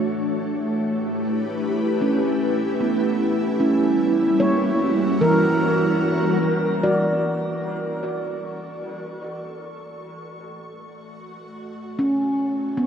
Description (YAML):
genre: ambient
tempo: 76 BPM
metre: 4/4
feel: straight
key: unclear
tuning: A4 = 440 Hz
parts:
  - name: ethereal airy pad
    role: sustained chords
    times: 0.0-12.9 s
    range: G3 to C#6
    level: -23 LUFS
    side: right 1 dB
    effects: ensemble chorus, built-in reverb, shimmer reverb
  - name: handpan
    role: arpeggios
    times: 0.0-12.9 s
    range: E3 to D5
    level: -23 LUFS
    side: equal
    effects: tape echo, shimmer reverb
room: wet cathedral reverb, RT60 5.2 s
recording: in a vast, echoing space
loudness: -19 LUFS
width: side -8 dB against mid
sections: 0.0-6.4 A section; 6.4-12.9 B section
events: filter sweep on ambient pad 0.0-6.4; fade-in on ambient pad 6.4-12.9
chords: 0.0 G69; 3.2 F#7b9; 6.4 E13sus4; 9.6 Dmaj7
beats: | 0.03 0.82 1.61 2.41 | 3.20 4.00 4.80 5.62 | 6.43 7.23 8.03 8.83 | 9.62 10.41 11.20 11.98 | 12.77